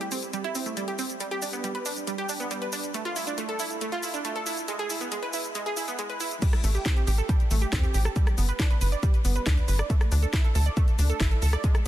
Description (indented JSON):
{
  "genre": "uplifting trance",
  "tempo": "138 BPM",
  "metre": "4/4",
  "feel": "straight",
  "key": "A minor",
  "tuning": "A4 = 440 Hz",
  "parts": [
    { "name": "analog pluck", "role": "arpeggios", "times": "0.0-11.7 s", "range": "G3 to D5", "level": "-30 LUFS", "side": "right 3 dB", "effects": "chorus, sidechain pumping, ping-pong delay" },
    { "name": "house drum kit", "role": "drums", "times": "0.0-11.8 s", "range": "crash cymbal, hi-hat, rim click, shaker, snare drum", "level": "-33 LUFS", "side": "left 2 dB", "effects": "overdrive" },
    { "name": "electronic kick drum", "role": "drums", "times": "6.4-11.7 s", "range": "none", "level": "-23 LUFS", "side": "equal", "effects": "overdrive" },
    { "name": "tight sequencer bass", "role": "bass", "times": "6.6-11.6 s", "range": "G1 to E2", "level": "-24 LUFS", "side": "equal", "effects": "sidechain pumping" }
  ],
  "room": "little or no reverb",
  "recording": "dense, heavily limited modern master, high-pass filter",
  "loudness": "-24 LUFS",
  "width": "side -13 dB against mid",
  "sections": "0.0-6.4 A section; 6.4-11.9 B section",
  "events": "build-up 0.0-6.4; filter sweep on synth pluck 0.0-6.4; drop 6.4-11.9",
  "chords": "0.0 Am7 (rootless); 1.2 G; 2.9 Dmadd9 (rootless); 4.7 E; 6.4 A7(no3); 8.2 G; 9.9 D5"
}